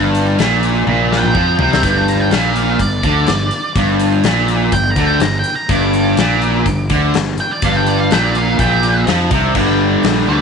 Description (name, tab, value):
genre	blues rock power trio and southern rock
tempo	124 BPM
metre	4/4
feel	straight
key	G minor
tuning	A4 = 441 Hz
part	distorted electric guitar	riff	0.0-10.4 s	G2 to G3	-15 LUFS	equal	overdrive
part	fuzz fingered electric bass	bass	0.0-10.4 s	G1 to F2	-18 LUFS	right 1 dB	overdrive
part	big rock drum kit	drums	0.1-10.2 s	crash cymbal, hi-hat, kick drum, snare drum, toms	-20 LUFS	left 4 dB	none
part	octave-fuzz lead guitar	melody	1.1-10.4 s	D5 to D6	-20 LUFS	right 3 dB	distortion
room	light reverb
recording	1960s-style stereo, nothing above 10.9 kHz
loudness	-12 LUFS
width	side -6 dB against mid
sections	0.0-9.6 A section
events	drum fill 0.9-1.8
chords	0.0 Gm